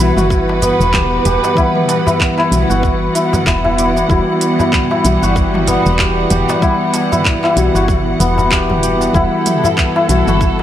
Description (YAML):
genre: organic downtempo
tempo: 95 BPM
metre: 4/4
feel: swing 57% on 16ths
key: E minor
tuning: A4 = 440 Hz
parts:
  - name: muted felt-like synth keys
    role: accompaniment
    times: 0.0-10.6 s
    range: E3 to F#5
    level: -18 LUFS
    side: left 2 dB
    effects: chorus, sidechain pumping, tape echo
  - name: dark studio string section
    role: sustained chords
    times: 0.0-10.6 s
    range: E3 to F#5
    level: -19 LUFS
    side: right 4 dB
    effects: sidechain pumping
  - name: santur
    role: arpeggios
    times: 0.0-10.6 s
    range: B3 to D5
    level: -16 LUFS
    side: left 1 dB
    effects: tape echo
  - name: woody FM bass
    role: bass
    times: 0.0-10.6 s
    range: E1 to B1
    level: -17 LUFS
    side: equal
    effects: none
  - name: organic electronic drum kit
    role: drums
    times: 0.0-10.6 s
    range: cabasa, handclaps, hi-hat, toms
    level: -20 LUFS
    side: right 1 dB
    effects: small room ambience
  - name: darbuka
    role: percussion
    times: 0.2-10.6 s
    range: none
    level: -25 LUFS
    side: left 1 dB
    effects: none
  - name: electronic kick drum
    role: drums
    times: 0.3-10.6 s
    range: none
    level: -16 LUFS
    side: equal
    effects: small room ambience
room: light reverb, digital ambience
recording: none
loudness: -11 LUFS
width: side -11 dB against mid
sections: 0.0-10.6 A section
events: none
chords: 0.0 Emadd9